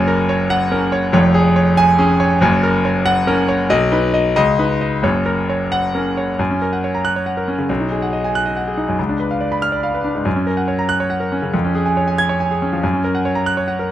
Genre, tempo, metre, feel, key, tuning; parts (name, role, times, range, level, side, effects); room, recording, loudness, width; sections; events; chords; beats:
classical, virtuoso piano study; 93 BPM (dotted quarters); 6/8; rubato; F# major; A4 = 440 Hz
clear concert grand piano; solo; 0.0-13.9 s; E#1 to G#6; -15 LUFS; equal
little or no reverb; close, detailed microphones; -15 LUFS; side -12 dB against mid
0.0-6.4 A section; 6.4-13.9 B section
0.0 F#; 1.1 C#/E#; 2.4 F#; 3.7 B; 4.4 C#sus2; 5.0 F#; 7.7 B6; 9.0 C#7b9; 10.3 F#; 11.5 C#/E#; 12.8 F#
0.50 | 1.14 1.78 | 2.42 3.06 | 3.70 4.36 | 5.04 5.71 | 6.39 7.05 | 7.69 8.34 | 8.98 9.62 | 10.26 10.89 | 11.54 12.18 | 12.83 13.47